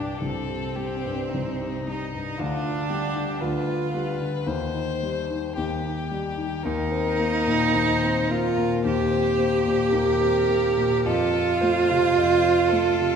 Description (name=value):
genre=classical, slow romantic movement for piano trio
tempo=55 BPM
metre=4/4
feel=rubato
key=unclear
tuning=A4 = 441 Hz
part: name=dark violin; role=melody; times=0.0-13.2 s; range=Eb4 to C5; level=-30 LUFS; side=left 7 dB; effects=none
part: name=rich cello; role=second line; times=0.0-13.2 s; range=C4 to G4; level=-23 LUFS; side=right 4 dB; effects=none
part: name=dark concert grand piano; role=accompaniment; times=0.0-13.2 s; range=C2 to G4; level=-26 LUFS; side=left 3 dB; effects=none
room=wet concert hall reverb, RT60 1.9 s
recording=heard from further back in the room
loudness=-21 LUFS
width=side -7 dB against mid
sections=0.0-13.2 A section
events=none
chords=0.0 Cm; 2.4 G5/D; 4.5 Cm/Eb; 6.6 Cm7/Eb; 11.1 F